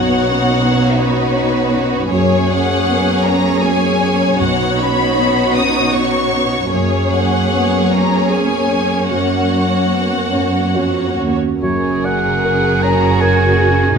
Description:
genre	cinematic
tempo	45-56 BPM (dotted quarters)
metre	6/8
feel	rubato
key	F# major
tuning	A4 = 440 Hz
part	warm symphonic violin section	melody	0.0-13.9 s	A#4 to D#6	-21 LUFS	left 3 dB	none
part	warm symphonic violin section	second line	0.0-14.0 s	F#4 to C#5	-19 LUFS	left 1 dB	none
part	dark baby grand piano	accompaniment	0.0-14.0 s	B1 to C#5	-19 LUFS	left 1 dB	none
part	warm symphonic viola section	accompaniment	0.0-14.0 s	A#3 to D#4	-22 LUFS	right 3 dB	none
part	warm symphonic cello section	bass	0.0-14.0 s	D#2 to F#4	-20 LUFS	right 2 dB	none
part	clear oboe	second line	11.6-14.0 s	C#5 to A#5	-18 LUFS	right 2 dB	none
part	dark symphonic double bass section	bass	11.6-14.0 s	F#1	-17 LUFS	right 3 dB	none
room	wet recital hall reverb, RT60 1.3 s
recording	none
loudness	-13 LUFS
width	side -6 dB against mid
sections	0.0-11.6 A section; 11.6-14.0 A section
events	none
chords	0.0 Badd9; 2.1 F#add9; 4.4 Badd9; 6.7 F#add9; 9.1 F#; 11.6 F#add9

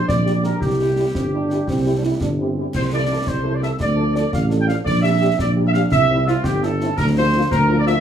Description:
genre	military-style march for wind band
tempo	113 BPM (dotted quarters)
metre	6/8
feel	straight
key	unclear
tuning	A4 = 441 Hz
part	warm trumpet section	melody	0.0-8.0 s	F4 to G5	-21 LUFS	equal	none
part	mellow tuba	bass	0.1-8.0 s	G1 to D2	-19 LUFS	right 1 dB	none
part	concert snare drum, concert bass drum and clash cymbals	drums	0.1-8.0 s	none	-26 LUFS	equal	none
part	mellow French horn section	accompaniment	0.3-7.9 s	E3 to A4	-26 LUFS	left 1 dB	none
part	clear euphonium	second line	1.2-2.7 s	C4 to E4	-25 LUFS	right 2 dB	none
room	moderate studio reverb, RT60 0.7 s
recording	small room ambience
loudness	-16 LUFS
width	side -9 dB against mid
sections	0.0-8.0 A section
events	none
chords	0.0 Gm/Bb; 0.6 C; 2.7 Am/C; 3.8 Dm; 4.9 Gm/Bb; 5.9 C; 7.0 Bb/D

